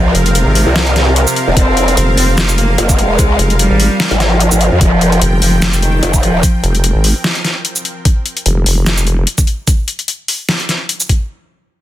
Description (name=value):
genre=heavy wobble dubstep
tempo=148 BPM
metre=4/4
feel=swing 55% on 16ths, half-time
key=F minor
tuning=A4 = 440 Hz
part: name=warm cello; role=melody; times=0.0-6.4 s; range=C3 to C4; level=-17 LUFS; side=equal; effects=dub echo
part: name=supersaw pad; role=sustained chords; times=0.0-8.0 s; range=F3 to G5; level=-21 LUFS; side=right 2 dB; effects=sidechain pumping
part: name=growl bass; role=bass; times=0.0-6.4 s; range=Eb1 to F2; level=-12 LUFS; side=equal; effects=chorus, overdrive
part: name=vowel-sweep wobble bass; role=bass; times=0.1-9.3 s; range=F1 to Ab1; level=-12 LUFS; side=equal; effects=chorus, overdrive
part: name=dubstep drum kit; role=drums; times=0.1-11.2 s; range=hi-hat, shaker, snare drum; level=-16 LUFS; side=left 1 dB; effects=overdrive, studio ambience
part: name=electronic kick drum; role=drums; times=1.6-11.2 s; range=none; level=-12 LUFS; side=equal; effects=overdrive, studio ambience
room=little or no reverb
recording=dense, heavily limited modern master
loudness=-10 LUFS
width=side -13 dB against mid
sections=0.0-11.3 A section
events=drop 0.0-11.3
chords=0.0 F5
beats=0.35 0.76 1.16 | 1.57 1.97 2.38 2.78 | 3.19 3.60 4.00 4.41 | 4.81 5.22 5.62 6.03 | 6.43 6.84 7.24 7.65 | 8.05 8.46 8.87 9.27 | 9.68 10.08 10.49 10.89